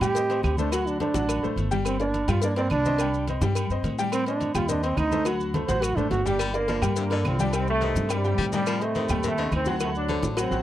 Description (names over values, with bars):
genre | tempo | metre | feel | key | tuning
latin, salsa | 211 BPM | 4/4 | straight | G minor | A4 = 440 Hz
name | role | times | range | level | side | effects
bright trombone | melody | 0.0-6.4 s | C4 to C5 | -26 LUFS | right 3 dB | none
bright upright piano | accompaniment | 0.0-10.6 s | F#3 to G5 | -29 LUFS | left 3 dB | none
upright bass | bass | 0.0-10.6 s | G1 to A2 | -28 LUFS | equal | none
agogo bells and timbales | percussion | 0.0-10.5 s | none | -37 LUFS | right 5 dB | none
claves | percussion | 0.0-10.5 s | none | -40 LUFS | right 8 dB | none
congas | percussion | 0.0-10.6 s | none | -33 LUFS | equal | none
cowbell | percussion | 0.0-10.5 s | none | -36 LUFS | left 6 dB | none
maracas | percussion | 0.0-10.6 s | none | -40 LUFS | left 7 dB | none
mellow trombone section | melody | 6.3-10.6 s | Bb2 to D4 | -28 LUFS | right 2 dB | none
bright baritone saxophone | second line | 6.4-10.4 s | C3 to G3 | -33 LUFS | left 6 dB | none
room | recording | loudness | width
little or no reverb | dry, close 1970s-style studio recording | -22 LUFS | side -13 dB against mid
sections
0.0-6.4 A section; 6.4-10.6 B section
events
trombone solo 0.0-6.4; drum fill 5.5-6.4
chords
0.0 Am7b5; 0.7 D7; 1.9 Gm; 3.0 Cm; 4.1 Am7b5; 5.3 D7; 6.4 Gm7; 7.5 Cm; 8.7 Am7b5; 9.8 D7